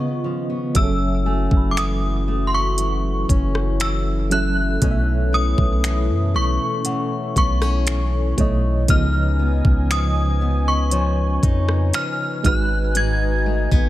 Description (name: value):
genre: contemporary R&B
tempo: 59 BPM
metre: 4/4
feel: straight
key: F# dorian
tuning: A4 = 440 Hz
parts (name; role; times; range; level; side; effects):
- synth chime; melody; 0.0-13.9 s; B#5 to G#6; -25 LUFS; equal; ensemble chorus, digital delay
- FM electric piano with tremolo; accompaniment; 0.0-13.9 s; B2 to E5; -27 LUFS; right 4 dB; none
- warm analog pad; sustained chords; 0.0-13.9 s; D#3 to G#5; -29 LUFS; left 2 dB; chorus
- fingerpicked steel-string acoustic guitar; arpeggios; 0.0-13.9 s; F#2 to D#4; -28 LUFS; left 6 dB; none
- smooth R&B drum kit; drums; 0.7-13.9 s; finger snaps, hi-hat, kick drum, rim click; -20 LUFS; equal; none
- long sustained 808-style bass; bass; 0.8-13.9 s; F#1 to F#2; -20 LUFS; equal; none
- celesta; texture; 1.3-12.9 s; C#5 to B5; -36 LUFS; left 2 dB; digital delay
room: digital ambience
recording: none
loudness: -17 LUFS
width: side -15 dB against mid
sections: 0.8-13.9 A section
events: break 0.0-0.8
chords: 0.0 C#9; 0.8 F#m7; 4.8 B9sus4; 8.9 C#9; 12.4 G#m7